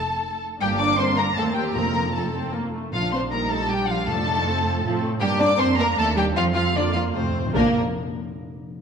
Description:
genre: quick classical-period movement for symphony orchestra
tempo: 156 BPM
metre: 3/4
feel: straight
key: Bb major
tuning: A4 = 441 Hz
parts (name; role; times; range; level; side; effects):
- muted chamber violin section; melody; 0.0-7.8 s; Bb4 to D6; -26 LUFS; left 2 dB; none
- muted studio violin section; second line; 0.0-7.8 s; Bb3 to D5; -27 LUFS; left 3 dB; none
- muted chamber cello section; bass; 0.0-7.8 s; C3 to D4; -27 LUFS; right 4 dB; none
- muted symphonic viola section; accompaniment; 0.6-7.8 s; Eb3 to F4; -28 LUFS; right 1 dB; none
- muted chamber double bass section; bass; 0.6-7.8 s; G1 to A2; -28 LUFS; right 4 dB; none
- timpani; percussion; 1.8-4.6, 7.1-7.7 s; F2 to Bb2; -32 LUFS; left 2 dB; none
room: wet scoring stage reverb, RT60 1.7 s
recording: none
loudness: -20 LUFS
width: side -6 dB against mid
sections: 0.0-7.5 A section; 7.5-8.7 B section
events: timpani fill 7.1-7.5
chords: 0.0 N.C.; 0.6 Gm; 1.4 Cm7/Eb; 1.8 F; 2.9 Bb; 4.1 F7; 5.2 Gm; 6.0 Eb; 6.4 Bb/F; 7.1 F; 7.5 Bb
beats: 0.23 | 0.61 0.99 1.37 | 1.76 2.15 2.54 | 2.94 3.32 3.70 | 4.09 4.46 4.84 | 5.22 5.60 5.98 | 6.36 6.75 7.14 | 7.55

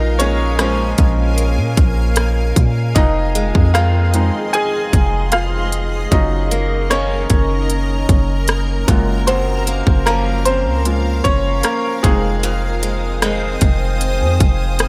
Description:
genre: contemporary R&B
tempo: 76 BPM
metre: 4/4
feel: straight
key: unclear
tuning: A4 = 440 Hz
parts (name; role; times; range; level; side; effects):
- bright grand piano; accompaniment; 0.0-14.9 s; Gb3 to Ab5; -23 LUFS; equal; none
- granular cloud pad; sustained chords; 0.0-14.9 s; Ab4 to Eb6; -28 LUFS; equal; built-in reverb, sidechain pumping
- picked old ladder-braced acoustic guitar; arpeggios; 0.0-14.9 s; F2 to Db4; -27 LUFS; equal; digital delay
- warm 808-style bass; bass; 0.0-14.9 s; F1 to Bb2; -20 LUFS; equal; none
- trap drum kit; drums; 0.2-14.9 s; hi-hat, kick drum, rim click; -18 LUFS; equal; none
room: little or no reverb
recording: none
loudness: -16 LUFS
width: mono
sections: 0.0-14.9 A section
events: grand piano solo 0.0-14.9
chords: 0.0 Bbm7; 3.0 Fm7; 6.1 Ebm7/Gb; 12.0 Fm7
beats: 0.59 1.38 2.17 | 2.96 3.75 4.54 5.33 | 6.12 6.91 7.70 8.48 | 9.27 10.06 10.85 11.64 | 12.43 13.22 14.01 14.80

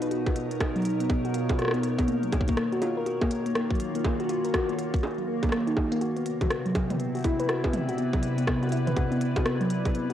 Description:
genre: IDM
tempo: 122 BPM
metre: 4/4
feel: swing 62% on 16ths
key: unclear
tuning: A4 = 440 Hz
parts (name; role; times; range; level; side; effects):
- glassy FM pad; sustained chords; 0.0-10.1 s; B2 to D5; -30 LUFS; equal; ensemble chorus, built-in reverb, cassette tape
- harp-like synth pluck; arpeggios; 0.0-10.1 s; F#3 to B4; -28 LUFS; left 1 dB; chorus, cassette tape, tape echo
- organic electronic drum kit; drums; 0.0-10.1 s; bongos, hi-hat, rim click, toms; -32 LUFS; right 1 dB; cassette tape, analog delay
- electronic kick drum; drums; 0.3-9.9 s; none; -28 LUFS; equal; cassette tape
room: moderate spring reverb, RT60 1.2 s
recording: home recording on cassette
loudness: -24 LUFS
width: side -11 dB against mid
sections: 0.0-10.1 A section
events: none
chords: 0.0 Bmaj7; 2.1 D#m7; 6.0 Cmaj7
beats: | 0.11 0.60 1.09 1.59 | 2.08 2.57 3.06 3.55 | 4.05 4.54 5.03 5.52 | 6.01 6.50 7.00 7.49 | 7.98 8.47 8.96 9.46 | 9.95

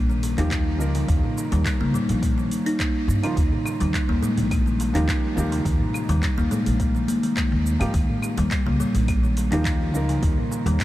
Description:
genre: organic downtempo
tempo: 105 BPM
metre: 4/4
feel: straight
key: Eb mixolydian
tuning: A4 = 440 Hz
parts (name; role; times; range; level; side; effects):
- upright bass; bass; 0.0-10.8 s; Bb1 to Ab2; -24 LUFS; equal; sidechain pumping
- kalimba; arpeggios; 0.1-10.8 s; C3 to Eb4; -24 LUFS; left 1 dB; analog delay
- afro-pop drum kit; drums; 0.1-10.8 s; claves, handclaps, hi-hat, shaker; -33 LUFS; equal; studio ambience
- darbuka; percussion; 0.2-10.8 s; none; -33 LUFS; right 1 dB; none
- felt-muted upright piano; accompaniment; 0.4-10.8 s; F3 to Bb4; -33 LUFS; right 2 dB; sidechain pumping, analog delay
- electronic kick drum; drums; 0.5-10.8 s; none; -24 LUFS; equal; overdrive, studio ambience
room: moderate huge ambient reverb, RT60 7.8 s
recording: dreamy mix soaked in reverb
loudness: -20 LUFS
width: side -15 dB against mid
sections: 0.0-10.8 A section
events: none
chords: 0.0 Eb7; 3.4 Ab5 (rootless); 7.9 Eb7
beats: 0.51 | 1.09 1.66 2.23 2.80 | 3.37 3.94 4.51 5.09 | 5.66 6.23 6.80 7.37 | 7.94 8.51 9.09 9.66 | 10.23 10.80

